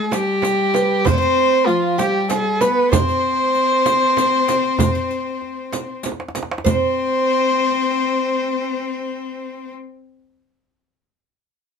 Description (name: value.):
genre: Persian modal ensemble.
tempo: 64 BPM (dotted quarters).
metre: 6/8.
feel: straight.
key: C dastgah chahargah.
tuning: A4 = 440 Hz.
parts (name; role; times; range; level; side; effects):
rich kamancheh; melody; 0.0-9.7 s; F4 to C5; -19 LUFS; equal; none.
bright cello; second line; 0.0-9.7 s; F3 to C4; -23 LUFS; left 8 dB; none.
oud; second line; 0.0-9.7 s; F4 to Db5+45c; -23 LUFS; right 7 dB; none.
frame drum; percussion; 0.1-7.0 s; none; -24 LUFS; right 6 dB; none.
riq; percussion; 0.1-7.0 s; none; -26 LUFS; left 3 dB; none.
tombak; percussion; 0.1-6.9 s; none; -24 LUFS; right 2 dB; none.
room: moderate studio ambience, RT60 0.5 s.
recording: band playing live in one room.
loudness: -16 LUFS.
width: side -6 dB against mid.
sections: 0.0-6.7 A section; 6.7-10.4 B section.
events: drum fill 6.0-6.7.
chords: none.